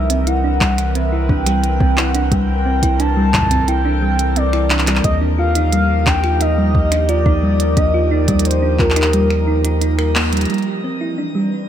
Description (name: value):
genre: IDM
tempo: 88 BPM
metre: 4/4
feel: straight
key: unclear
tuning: A4 = 440 Hz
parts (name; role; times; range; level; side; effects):
- warm velvety synth lead; melody; 0.0-10.2 s; Bb4 to A5; -21 LUFS; left 1 dB; chorus, cassette tape, digital delay, shimmer reverb
- warbly tape-like pad; sustained chords; 0.0-11.7 s; E3 to D5; -23 LUFS; right 1 dB; chorus, built-in reverb, vintage 12-bit sampler grit, shimmer reverb
- round analog bass; bass; 0.0-10.5 s; C2 to Eb2; -18 LUFS; equal; tube saturation
- thumb-piano-like synth pluck; arpeggios; 0.1-11.5 s; G3 to Bb4; -20 LUFS; right 1 dB; chorus, ping-pong delay, shimmer reverb
- glitchy drum kit; drums; 0.1-10.7 s; finger snaps, handclaps, hi-hat; -21 LUFS; right 1 dB; overdrive
- electronic kick drum; drums; 0.6-8.9 s; none; -18 LUFS; equal; overdrive
room: moderate echo chamber reverb, RT60 2.2 s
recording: none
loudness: -14 LUFS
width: side -10 dB against mid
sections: 0.0-10.5 A section; 10.5-11.7 B section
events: filter sweep on synth arpeggio sound 0.0-10.5; kick drops out 9.1-10.5; band accent 10.2-10.5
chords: 0.0 Cmaj9; 5.0 Ebmaj9; 10.5 Cmaj9